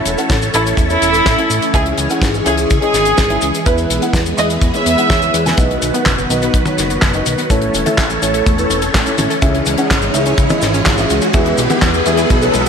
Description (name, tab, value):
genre	italo disco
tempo	125 BPM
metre	4/4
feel	straight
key	E major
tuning	A4 = 440 Hz
part	string machine, full ensemble	sustained chords	0.0-12.7 s	D#3 to C#5	-18 LUFS	equal	phaser, ensemble chorus
part	dark grand piano	stabs	0.0-12.7 s	A3 to G#5	-21 LUFS	right 1 dB	low-pass filter, ping-pong delay
part	fat analog bass	bass	0.1-12.7 s	E1 to E2	-21 LUFS	equal	none
part	damped 70s drum kit	drums	0.1-12.7 s	cabasa, handclaps, hi-hat, snare drum, toms	-19 LUFS	left 2 dB	studio ambience, gated reverb
part	kick drum	drums	0.3-12.4 s	none	-16 LUFS	equal	studio ambience
part	warm studio violin section	melody	0.5-5.5 s	E4 to E5	-17 LUFS	right 1 dB	digital delay
part	wide unison pluck	arpeggios	5.6-12.7 s	B2 to A4	-23 LUFS	left 3 dB	ping-pong delay
part	riser and swell	sound effects	7.4-12.7 s	none	-22 LUFS	equal	none
room	moderate lush hall reverb, RT60 1.9 s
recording	none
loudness	-12 LUFS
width	side -6 dB against mid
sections	0.0-5.6 A section; 5.6-12.7 B section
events	drum fill 5.1-5.6; band accent 5.5; filter sweep on grand piano 5.6-12.7; riser 7.4-12.7; swell 12.3-12.7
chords	0.0 A; 1.7 C#m; 3.7 E; 5.6 B; 7.5 A; 9.4 C#m; 11.3 E